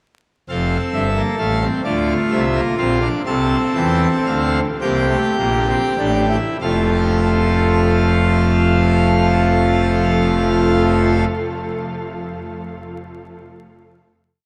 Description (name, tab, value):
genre	classical, baroque-style 4-part fugue for pipe organ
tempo	31-45 BPM (dotted quarters)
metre	6/8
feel	straight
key	F major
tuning	A4 = 440 Hz
part	pipe organ, full organ	solo	0.5-11.3 s	F1 to A5	-18 LUFS	equal	none
room	wet huge ambient reverb, RT60 8.1 s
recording	in a vast, echoing space, vinyl crackle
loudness	-17 LUFS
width	mono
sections	0.5-6.6 exposition; 6.6-10.5 final chord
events	slowing down 0.5-8.5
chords	0.5 F; 1.8 Dm; 3.2 F/C; 4.8 C7; 6.6 F